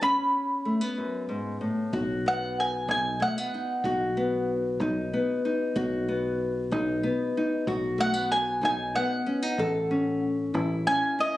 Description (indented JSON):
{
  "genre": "acoustic folk duo or small band",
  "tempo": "63 BPM (dotted quarters)",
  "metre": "6/8",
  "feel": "straight",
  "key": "B mixolydian",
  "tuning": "A4 = 441 Hz",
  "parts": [
    { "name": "mandolin", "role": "melody", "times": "0.0-4.5, 8.0-11.4 s", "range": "D#5 to B5", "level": "-26 LUFS", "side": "right 1 dB", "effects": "none" },
    { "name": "nylon-string guitar", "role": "accompaniment", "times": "0.0-11.4 s", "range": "F#2 to A4", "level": "-28 LUFS", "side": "left 1 dB", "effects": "none" },
    { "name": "fingered electric bass", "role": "bass", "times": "1.9-10.9 s", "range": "A1 to B1", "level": "-32 LUFS", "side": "equal", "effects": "none" }
  ],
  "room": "moderate large studio reverb, RT60 1.1 s",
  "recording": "recorded on a phone in the room, club reverb, compression",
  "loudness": "-25 LUFS",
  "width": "side -15 dB against mid",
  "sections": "0.0-1.9 A section; 1.9-11.4 B section",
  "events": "mandolin solo 1.9-11.4",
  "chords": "0.0 F#sus4; 1.9 B; 9.6 A",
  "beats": "| 0.01 0.97 | 1.93 2.89 | 3.85 4.80 | 5.76 6.72 | 7.68 8.64 | 9.60 10.55"
}